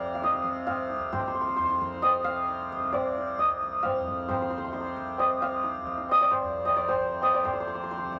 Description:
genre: indian classical, Hindustani.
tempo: 133 BPM.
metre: 7/4.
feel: straight.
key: unclear.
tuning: A4 = 440 Hz.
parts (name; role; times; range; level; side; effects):
santur; melody; 0.0-8.2 s; C5 to F5; -29 LUFS; equal; none.
tanpura; drone; 0.0-8.2 s; C2 to C3; -37 LUFS; equal; none.
tabla; percussion; 0.2-8.2 s; none; -36 LUFS; equal; none.
room: wet studio reverb, RT60 0.6 s.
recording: none.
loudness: -27 LUFS.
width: mono.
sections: 0.0-7.4 A section.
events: none.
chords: none.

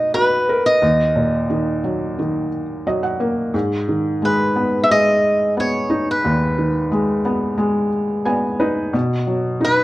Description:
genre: acoustic folk-pop ballad.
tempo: 89 BPM.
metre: 4/4.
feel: straight.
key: G# minor.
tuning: A4 = 439 Hz.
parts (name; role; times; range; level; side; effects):
picked swing-style acoustic guitar; melody; 0.0-9.8 s; B4 to E5; -18 LUFS; equal; plate reverb.
felt-muted upright piano; accompaniment; 0.0-9.8 s; D#2 to G#5; -18 LUFS; equal; none.
room: moderate studio reverb, RT60 0.8 s.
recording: worn, warbling old tape, cassette tape, warbly pitch drift.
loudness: -16 LUFS.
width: side -17 dB against mid.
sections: 0.0-9.8 A section.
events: none.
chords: 0.0 Bmaj7; 0.8 D#m; 3.5 G#m; 8.9 B.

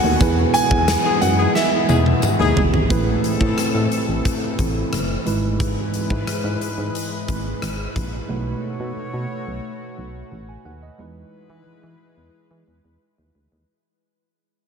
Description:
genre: 1980s-style pop.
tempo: 89 BPM.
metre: 4/4.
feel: straight.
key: E major.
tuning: A4 = 440 Hz.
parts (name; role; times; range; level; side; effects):
clear baby grand piano; melody; 0.0-2.5 s; E5 to G#5; -22 LUFS; right 1 dB; wide subtle chorus, tape echo.
tine electric piano; accompaniment; 0.0-13.7 s; G#2 to G#5; -26 LUFS; right 4 dB; none.
lush unison pad; sustained chords; 0.0-13.7 s; B2 to B4; -27 LUFS; left 1 dB; chorus.
solid FM bass; bass; 0.0-13.6 s; F#1 to E3; -24 LUFS; left 1 dB; none.
huge arena drum kit; drums; 0.2-8.1 s; hi-hat, kick drum, rim click, snare drum, tambourine, toms; -23 LUFS; equal; none.
tambourine; percussion; 0.2-2.4 s; none; -38 LUFS; left 10 dB; none.
warm horn section; stabs; 1.0-13.3 s; E3 to C#5; -28 LUFS; left 4 dB; tape echo.
room: wet huge ambient reverb, RT60 8.6 s.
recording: dreamy mix soaked in reverb.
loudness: -18 LUFS.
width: side -6 dB against mid.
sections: 0.0-2.9 A section; 2.9-13.7 B section.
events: drum fill 1.6-2.9; fade-out 2.9-13.7.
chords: 0.2 Emaj7; 2.9 Amadd9; 5.3 Emaj7/G#; 8.3 B7; 11.0 Emaj7.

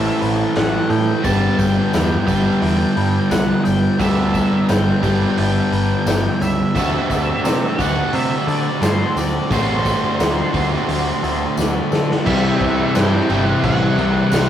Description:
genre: rock, shoegaze and dream pop.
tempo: 87 BPM.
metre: 4/4.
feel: straight.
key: C lydian.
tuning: A4 = 439 Hz.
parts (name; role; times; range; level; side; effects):
octave-fuzz lead guitar; melody; 0.0-14.5 s; C5 to A5; -26 LUFS; equal; distortion, slapback echo.
direct-recorded clean electric guitar; arpeggios; 0.0-14.5 s; G3 to B4; -32 LUFS; left 3 dB; none.
crunchy overdriven guitar; riff; 0.0-14.5 s; G2 to A4; -21 LUFS; right 5 dB; none.
thick fuzz guitar; riff; 0.0-14.5 s; G2 to D4; -20 LUFS; left 4 dB; distortion.
growling picked electric bass; bass; 0.0-14.5 s; G1 to D3; -22 LUFS; equal; overdrive.
raw garage drum kit; drums; 0.2-14.5 s; crash cymbal, hi-hat, kick drum, snare drum; -23 LUFS; equal; none.
tambourine; percussion; 1.2-14.5 s; none; -37 LUFS; left 5 dB; none.
biting overdriven guitar; riff; 12.3-14.5 s; C3 to C4; -24 LUFS; left 1 dB; none.
room: moderate stone room reverb, RT60 0.9 s.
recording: rough rehearsal-room recording.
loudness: -15 LUFS.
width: side -10 dB against mid.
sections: 0.0-12.3 A section; 12.3-14.5 B section.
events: drum fill 11.6-12.3.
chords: 0.0 Am11; 1.3 G6; 6.8 D7sus4; 12.3 Cmaj7.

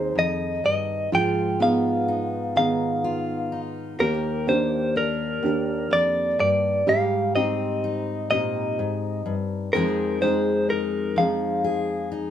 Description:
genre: folk.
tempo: 42 BPM (dotted quarters).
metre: 6/8.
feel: straight.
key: unclear.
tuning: A4 = 440 Hz.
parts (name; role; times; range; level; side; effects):
direct-recorded clean electric guitar; melody; 0.0-12.1 s; Bb4 to G5; -24 LUFS; left 1 dB; tremolo.
fingerpicked steel-string acoustic guitar; accompaniment; 0.0-12.3 s; Eb2 to Ab4; -27 LUFS; left 4 dB; none.
felt-muted upright piano; arpeggios; 0.0-12.3 s; F3 to Ab4; -27 LUFS; right 4 dB; none.
room: moderate studio reverb, RT60 0.6 s.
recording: band playing live in one room.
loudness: -21 LUFS.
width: side -10 dB against mid.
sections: 0.0-12.3 A section.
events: none.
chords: 0.0 Fm7; 1.1 Abm6; 4.0 Ebmaj7; 6.9 Abmaj7; 9.7 Fm7.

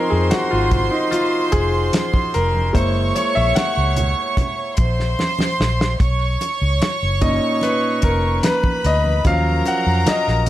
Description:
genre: lush 1970s-style soul.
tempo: 74 BPM.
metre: 4/4.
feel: straight.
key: unclear.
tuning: A4 = 440 Hz.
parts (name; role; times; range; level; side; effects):
warm studio violin section; second line; 0.0-10.5 s; Bb4 to Db6; -22 LUFS; right 2 dB; plate reverb.
clear grand piano; accompaniment; 0.0-10.5 s; A#2 to Gb5; -20 LUFS; left 1 dB; plate reverb.
vintage muted fingered electric bass; bass; 0.1-10.5 s; F1 to F2; -20 LUFS; equal; none.
warm soul drum kit; drums; 0.3-10.5 s; hi-hat, kick drum, snare drum; -20 LUFS; equal; none.
congas; percussion; 0.3-10.5 s; none; -28 LUFS; right 3 dB; none.
room: light reverb.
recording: none.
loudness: -16 LUFS.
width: side -14 dB against mid.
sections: 0.0-10.5 A section.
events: grand piano solo 0.0-10.5; drum fill 5.2-6.0.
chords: 0.0 Dbmaj7; 2.7 Gb7; 6.0 Bmaj7; 9.2 Ebm7.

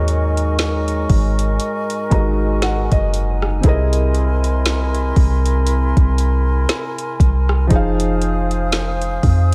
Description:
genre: contemporary R&B.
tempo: 59 BPM.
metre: 4/4.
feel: swing 58% on 16ths.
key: unclear.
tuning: A4 = 439 Hz.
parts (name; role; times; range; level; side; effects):
felt-muted upright piano; accompaniment; 0.0-9.5 s; Ab2 to Bb5; -25 LUFS; equal; none.
mellow hollow flute section; sustained chords; 0.0-9.5 s; E4 to Eb6; -27 LUFS; equal; none.
soft 808-style bass; bass; 0.0-9.5 s; F1 to F2; -20 LUFS; equal; none.
smooth R&B drum kit; drums; 0.1-9.5 s; hi-hat, kick drum, rim click, snare drum; -20 LUFS; equal; none.
room: digital ambience.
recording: none.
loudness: -17 LUFS.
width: mono.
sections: 0.0-9.5 A section.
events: felt piano fill 1.6-3.6.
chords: 0.0 Ab9sus4; 3.6 C7alt; 7.7 Fm7.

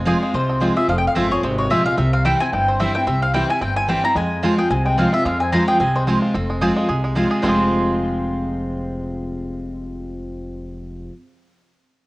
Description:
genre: bluegrass.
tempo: 220 BPM.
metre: 4/4.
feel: swing 56% on 8ths.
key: F harmonic minor.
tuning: A4 = 440 Hz.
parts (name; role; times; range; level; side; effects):
bluegrass banjo; melody; 0.0-11.1 s; F3 to Ab4; -28 LUFS; right 2 dB; cassette tape.
picked steel-string acoustic guitar; accompaniment; 0.0-11.1 s; F2 to F4; -21 LUFS; equal; cassette tape.
upright bass; bass; 0.0-11.1 s; F1 to F2; -25 LUFS; equal; none.
mandolin; stabs; 0.1-11.1 s; C4 to Ab5; -29 LUFS; right 4 dB; cassette tape.
mandolin; melody; 0.3-11.1 s; C5 to Bb5; -20 LUFS; left 1 dB; cassette tape.
room: light reverb, small room ambience.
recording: home recording on cassette.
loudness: -17 LUFS.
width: side -20 dB against mid.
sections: 0.0-6.3 A section; 6.3-7.4 B section; 7.4-9.6 C section.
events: none.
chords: 0.0 Fm; 2.0 C; 4.2 Fm.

